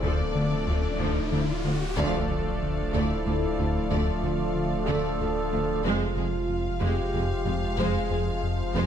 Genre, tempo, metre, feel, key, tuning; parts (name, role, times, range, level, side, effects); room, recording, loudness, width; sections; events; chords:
cinematic, hybrid orchestral and electronic film score; 62 BPM (dotted quarters); 6/8; straight; D minor; A4 = 440 Hz
dark duduk; melody; 0.0-8.9 s; D4 to C5; -34 LUFS; right 5 dB; digital delay
rich symphonic violin section; melody; 0.0-8.9 s; D5 to F5; -39 LUFS; left 4 dB
warm studio violin section; second line; 0.0-8.9 s; F4 to D5; -38 LUFS; left 3 dB
clear symphonic viola section; accompaniment; 0.0-8.9 s; F3 to A4; -34 LUFS; right 1 dB
mellow French horn section; sustained chords; 0.0-8.9 s; Ab3 to A4; -36 LUFS; left 5 dB
warm analog pad; sustained chords; 0.0-8.9 s; F3 to D5; -34 LUFS; left 2 dB; chorus
warm trombone section; sustained chords; 0.0-8.9 s; C3 to F3; -35 LUFS; right 5 dB
smooth synth bass; riff; 0.0-8.9 s; D2 to D3; -30 LUFS; left 3 dB
punchy sub bass; bass; 0.0-8.9 s; D1 to F1; -34 LUFS; equal
rich symphonic double bass section; bass; 0.0-8.8 s; F1 to D2; -35 LUFS; right 4 dB
warm symphonic cello section; bass; 0.0-8.8 s; D2 to F2; -34 LUFS; right 3 dB
riser and impact; sound effects; 0.0-3.9 s; -35 LUFS; left 1 dB
light reverb; close, detailed microphones; -24 LUFS; side -9 dB against mid
0.0-2.0 A section; 2.0-8.9 B section
riser 0.0-2.0; band accent 2.0-2.6; impact 2.0-3.9
0.0 Dm; 5.8 Fm